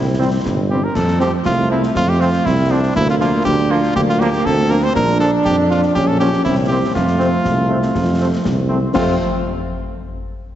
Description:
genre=military-style march for wind band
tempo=120 BPM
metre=2/4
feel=straight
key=F major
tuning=A4 = 440 Hz
part: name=mellow cornet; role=melody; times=0.0-9.2 s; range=D4 to C5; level=-21 LUFS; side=equal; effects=none
part: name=mellow euphonium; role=second line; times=0.0-8.7 s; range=A3 to D4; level=-21 LUFS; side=right 1 dB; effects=none
part: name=mellow tuba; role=bass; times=0.0-9.2 s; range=G1 to F2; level=-18 LUFS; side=right 1 dB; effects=none
part: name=dark French horn section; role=accompaniment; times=0.2-9.2 s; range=C3 to D4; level=-25 LUFS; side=left 3 dB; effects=none
part: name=warm trombone section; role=sustained chords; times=0.2-9.2 s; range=F3 to D4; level=-25 LUFS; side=right 2 dB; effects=none
part: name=concert snare drum, concert bass drum and clash cymbals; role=drums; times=0.5-9.2 s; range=none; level=-25 LUFS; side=left 2 dB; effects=none
room=wet concert hall reverb, RT60 2.1 s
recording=heavily compressed radio sound, multiband compression, nothing above 7.8 kHz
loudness=-14 LUFS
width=side -11 dB against mid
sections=0.0-8.9 A section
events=none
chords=0.0 C; 1.0 F; 3.0 Bb/D; 5.0 Bb; 6.0 Gm7b5/Bb; 6.5 C7; 7.0 F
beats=0.46 | 0.96 1.46 | 1.96 2.46 | 2.96 3.46 | 3.95 4.45 | 4.95 5.45 | 5.95 6.45 | 6.95 7.45 | 7.95 8.45 | 8.95

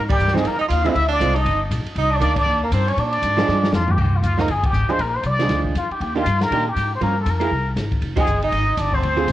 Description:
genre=jazz, small-group swing and bop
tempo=238 BPM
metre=4/4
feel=swing 60% on 8ths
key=C minor from 4.0 s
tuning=A4 = 438 Hz
part: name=trumpet with plunger mute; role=melody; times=0.0-9.3 s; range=F4 to F5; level=-22 LUFS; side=left 2 dB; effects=cassette tape
part: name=upright bass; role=bass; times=0.0-9.3 s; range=F1 to Bb2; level=-22 LUFS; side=left 1 dB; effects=none
part: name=edgy tenor saxophone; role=second line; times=0.1-3.7, 8.2-9.3 s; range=G3 to F4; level=-26 LUFS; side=right 6 dB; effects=cassette tape
part: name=open jazz drum kit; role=drums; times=0.1-9.3 s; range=crash cymbal, hi-hat, kick drum, ride cymbal, snare drum, toms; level=-24 LUFS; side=equal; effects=cassette tape
part: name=archtop guitar, miked and amplified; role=accompaniment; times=0.3-9.3 s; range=D3 to Ab4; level=-25 LUFS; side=right 6 dB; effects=cassette tape
room=moderate spring reverb, RT60 1.8 s, studio reverb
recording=home recording on cassette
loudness=-17 LUFS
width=side -14 dB against mid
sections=0.0-4.0 A section; 4.0-9.3 B section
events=band accent 0.1, 2.3, 4.6, 8.1; drum fill 3.5-4.0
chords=0.0 Ab6; 1.0 Dm7b5; 1.5 Gm; 2.0 Cm9; 3.0 Bb7; 4.0 Csus4; 5.0 Bb7; 6.0 Ebmaj7; 7.0 Gm7b5; 7.5 Ab; 8.0 Fm9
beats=0.20 0.45 0.70 | 0.95 1.20 1.46 1.71 | 1.96 2.21 2.46 2.71 | 2.97 3.22 3.47 3.72 | 3.98 4.23 4.48 4.73 | 4.99 5.24 5.49 5.74 | 6.00 6.25 6.50 6.75 | 7.01 7.26 7.51 7.76 | 8.02 8.27 8.52 8.78 | 9.03 9.28

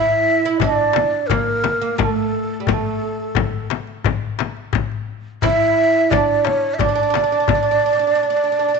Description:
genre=Arabic maqam ensemble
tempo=87 BPM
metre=4/4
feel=straight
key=unclear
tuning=A4 = 439 Hz
part: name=breathy mellow ney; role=melody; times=0.0-8.8 s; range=A4 to E5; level=-17 LUFS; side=right 2 dB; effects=none
part: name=oud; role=second line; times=0.0-8.8 s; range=G3 to E4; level=-23 LUFS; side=right 7 dB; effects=none
part: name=darbuka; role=percussion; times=0.6-7.7 s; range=none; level=-24 LUFS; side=left 7 dB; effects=none
part: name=frame drum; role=percussion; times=0.6-7.6 s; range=none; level=-23 LUFS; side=left 8 dB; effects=none
room=moderate echo chamber reverb, RT60 1.9 s, small room ambience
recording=1960s-style stereo with parts hard left and right, nothing above 8.0 kHz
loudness=-16 LUFS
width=side -4 dB against mid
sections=0.0-8.8 A section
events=none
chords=none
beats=0.62 1.30 1.99 | 2.68 3.36 4.05 4.74 | 5.43 6.11 6.80 7.49 | 8.18

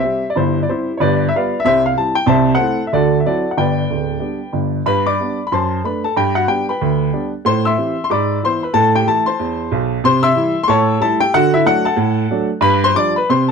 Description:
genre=jazz, stride piano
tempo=186 BPM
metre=4/4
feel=swing 59% on 8ths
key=G major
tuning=A4 = 440 Hz
part: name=warm upright piano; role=solo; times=0.0-13.5 s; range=D1 to E6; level=-14 LUFS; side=equal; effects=none
room=moderate studio reverb, RT60 0.7 s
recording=close, detailed microphones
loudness=-14 LUFS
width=side -5 dB against mid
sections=0.0-4.9 A section; 4.9-13.5 B section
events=none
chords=0.0 C; 1.0 G7; 1.6 C; 2.3 Am/C; 2.9 D9; 3.6 G; 5.5 D7/F#; 6.2 G; 7.4 Am7; 8.1 E7/G#; 8.7 Am; 10.0 C; 10.7 A7; 11.3 D; 12.6 G7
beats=0.02 0.34 0.67 | 0.99 1.31 1.64 1.96 | 2.28 2.60 2.92 3.25 | 3.57 3.89 4.22 4.54 | 4.86 5.19 5.51 5.83 | 6.16 6.48 6.80 7.12 | 7.45 7.77 8.10 8.42 | 8.74 9.06 9.39 9.71 | 10.04 10.36 10.68 11.01 | 11.33 11.65 11.98 12.30 | 12.63 12.95 13.28

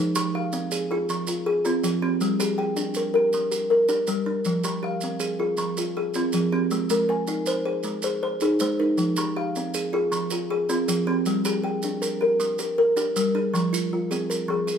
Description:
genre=southern african traditional, mbira-style interlocking cycle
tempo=106 BPM (dotted quarters)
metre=12/8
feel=straight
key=F dorian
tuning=A4 = 441 Hz
part: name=kalimba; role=arpeggios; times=0.0-14.8 s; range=F3 to Ab5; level=-24 LUFS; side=left 2 dB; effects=none
part: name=kalimba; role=arpeggios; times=0.0-14.8 s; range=F3 to C5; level=-27 LUFS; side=right 4 dB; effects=none
part: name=maracas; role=percussion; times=0.2-14.8 s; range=none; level=-34 LUFS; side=right 5 dB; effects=none
room=light reverb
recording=band playing live in one room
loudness=-22 LUFS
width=side -7 dB against mid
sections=0.0-13.5 A section; 13.5-14.8 B section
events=none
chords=0.0 Fm; 2.2 Gm; 4.5 Fm; 6.7 Ab; 9.0 Fm; 11.3 Gm; 13.5 Fm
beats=0.53 1.09 1.65 | 2.21 2.77 3.33 3.90 | 4.46 5.02 5.58 6.15 | 6.71 7.28 7.85 8.41 | 8.98 9.55 10.12 10.69 | 11.26 11.83 12.40 12.97 | 13.54 14.11 14.68

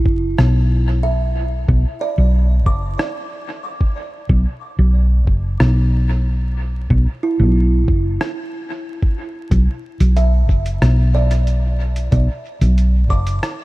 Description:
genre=ambient dub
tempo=92 BPM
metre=4/4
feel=straight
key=B minor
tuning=A4 = 440 Hz
part: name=kalimba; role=arpeggios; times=0.0-13.6 s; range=E4 to D6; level=-25 LUFS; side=right 3 dB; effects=vintage 12-bit sampler grit, diffuse ambient delay
part: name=hollow-body short-scale fingered electric bass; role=bass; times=0.0-13.4 s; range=F#1 to B1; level=-14 LUFS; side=equal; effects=none
part: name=electronic kick drum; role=drums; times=0.1-13.2 s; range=none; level=-17 LUFS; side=equal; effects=small room reverb
part: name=lo-fi sampler-style drum kit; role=drums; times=0.4-13.6 s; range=hi-hat, rim click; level=-28 LUFS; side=equal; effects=small room reverb, dub echo
room=digital ambience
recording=vinyl crackle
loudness=-14 LUFS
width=side -19 dB against mid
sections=0.0-13.6 A section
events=none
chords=0.0 Bm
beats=0.38 1.03 | 1.69 2.34 2.99 3.64 | 4.30 4.95 5.60 6.25 | 6.91 7.56 8.21 8.86 | 9.51 10.16 10.82 11.47 | 12.12 12.77 13.43

